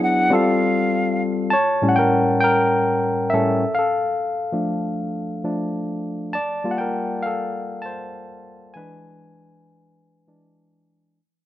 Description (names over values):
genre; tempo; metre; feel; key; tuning
soul; 99 BPM; 4/4; straight; unclear; A4 = 440 Hz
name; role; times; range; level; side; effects
breathy mellow silver concert flute; melody; 0.0-1.2 s; F5 to Gb5; -21 LUFS; equal; none
barky tine electric piano; accompaniment; 0.0-11.2 s; A2 to A5; -19 LUFS; left 1 dB; overdrive
room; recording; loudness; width
light reverb, small room ambience; none; -18 LUFS; side -13 dB against mid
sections
0.0-1.5 A section; 1.5-11.2 B section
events
fade-out 1.5-11.2; tine electric piano solo 1.5-11.2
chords
0.3 F; 1.5 A7b9; 3.6 F6; 6.3 Gm7; 8.8 E7